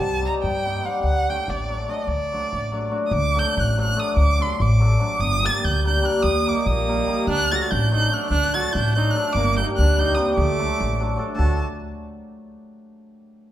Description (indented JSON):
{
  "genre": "balkan folk, Balkan wedding band",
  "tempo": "290 BPM (eighths)",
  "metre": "5/8",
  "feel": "straight",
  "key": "D phrygian dominant",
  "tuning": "A4 = 436 Hz",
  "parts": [
    { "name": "dark violin", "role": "melody", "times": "0.0-11.6 s", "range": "D5 to Bb6", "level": "-25 LUFS", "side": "right 2 dB", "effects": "none" },
    { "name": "cimbalom", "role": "accompaniment", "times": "0.0-11.6 s", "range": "F#3 to Bb4", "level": "-25 LUFS", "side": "left 2 dB", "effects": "none" },
    { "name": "upright bass", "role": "bass", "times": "0.0-11.6 s", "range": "G1 to G2", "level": "-22 LUFS", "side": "equal", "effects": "none" },
    { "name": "mellow trumpet", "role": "second line", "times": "6.5-11.6 s", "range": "A3 to G4", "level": "-28 LUFS", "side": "right 4 dB", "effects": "none" }
  ],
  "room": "moderate recital hall reverb, RT60 1.4 s",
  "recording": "recorded in a church or concert hall",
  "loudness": "-19 LUFS",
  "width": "side -12 dB against mid",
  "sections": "0.0-3.1 A section; 3.1-11.4 B section; 11.4-12.4 C section",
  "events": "none",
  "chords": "0.0 Cm; 1.0 D; 5.2 Gm; 6.2 Eb; 7.3 D; 9.3 Gm; 10.4 D"
}